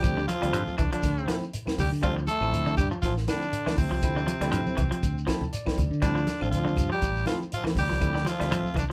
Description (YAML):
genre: afrobeat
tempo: 120 BPM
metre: 4/4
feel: swing 56% on 16ths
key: D minor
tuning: A4 = 440 Hz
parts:
  - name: raspy tenor saxophone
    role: melody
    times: 0.0-8.8 s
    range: C4 to A4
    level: -34 LUFS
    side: equal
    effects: none
  - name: growling trombone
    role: second line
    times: 0.0-8.8 s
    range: C3 to A3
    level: -37 LUFS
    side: equal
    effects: none
  - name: barky tine electric piano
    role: accompaniment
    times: 0.0-8.7 s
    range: F3 to A5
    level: -37 LUFS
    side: equal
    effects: none
  - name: electric guitar at the edge of break-up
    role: arpeggios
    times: 0.0-8.9 s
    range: D3 to G3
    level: -35 LUFS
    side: equal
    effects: none
  - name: fingered electric bass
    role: bass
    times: 0.0-8.9 s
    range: A1 to D3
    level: -32 LUFS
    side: equal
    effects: none
  - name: compact cocktail drum kit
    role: drums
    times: 0.0-8.9 s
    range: hi-hat, kick drum, snare drum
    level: -34 LUFS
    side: equal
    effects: none
  - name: claves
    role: percussion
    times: 0.0-8.9 s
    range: none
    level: -48 LUFS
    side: equal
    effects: none
  - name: shekere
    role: percussion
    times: 0.0-8.9 s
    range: none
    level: -41 LUFS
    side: equal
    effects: none
  - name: congas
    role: percussion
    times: 0.3-8.9 s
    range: none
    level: -35 LUFS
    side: equal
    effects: none
room: moderate small room reverb, RT60 0.5 s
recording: band playing live in one room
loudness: -27 LUFS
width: mono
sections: 0.0-8.9 A section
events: tine electric piano fill 5.0-6.0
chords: 0.0 Dm7